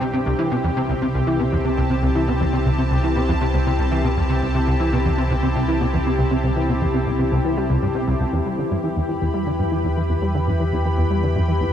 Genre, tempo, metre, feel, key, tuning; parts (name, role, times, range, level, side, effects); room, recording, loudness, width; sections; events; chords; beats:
ambient, sequencer-driven space music; 119 BPM; 4/4; straight; A4 = 441 Hz
lush unison pad; sustained chords; 0.0-11.7 s; C3 to B5; -22 LUFS; left 1 dB; chorus
plucky analog bass; riff; 0.0-11.7 s; C2 to G3; -22 LUFS; equal; ensemble chorus, ping-pong delay
warm sub bass; bass; 0.0-11.7 s; C2 to E2; -24 LUFS; equal
bubbling stepped-filter texture; texture; 0.0-11.7 s; C5 to G5; -38 LUFS; equal; chorus, built-in reverb
moderate lush hall reverb, RT60 2.7 s; dark, warm production; -18 LUFS; side -9 dB against mid
0.0-11.7 A section
fade-in on synth texture 0.0-11.7
0.0 C5; 8.3 Em
| 0.26 0.77 1.27 1.77 | 2.28 2.78 3.29 3.79 | 4.30 4.80 5.30 5.81 | 6.31 6.82 7.32 7.83 | 8.33 8.83 9.34 9.84 | 10.35 10.85 11.36